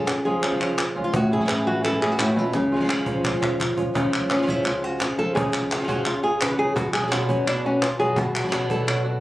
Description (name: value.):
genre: flamenco.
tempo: 170 BPM.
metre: 4/4.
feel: straight.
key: C# phrygian dominant.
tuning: A4 = 440 Hz.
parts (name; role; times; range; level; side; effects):
flamenco guitar; melody; 0.0-9.2 s; A2 to B4; -23 LUFS; equal; none.
flamenco guitar; stabs; 0.0-9.2 s; B2 to F#4; -27 LUFS; right 2 dB; none.
upright bass; bass; 0.0-9.2 s; A1 to C#3; -32 LUFS; equal; none.
cajon; percussion; 0.1-8.9 s; none; -29 LUFS; equal; none.
palmas hand claps; percussion; 0.1-9.1 s; none; -27 LUFS; equal; none.
room: moderate small room ambience, RT60 0.5 s.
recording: recorded on a phone in the room, club reverb, compression.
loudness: -20 LUFS.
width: side -16 dB against mid.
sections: 0.0-4.0 A section; 4.0-9.2 B section.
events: drum fill 2.5-4.0; nylon-string guitar solo 4.0-9.2.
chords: 0.0 C#; 1.1 A; 2.5 C#; 6.8 Bm.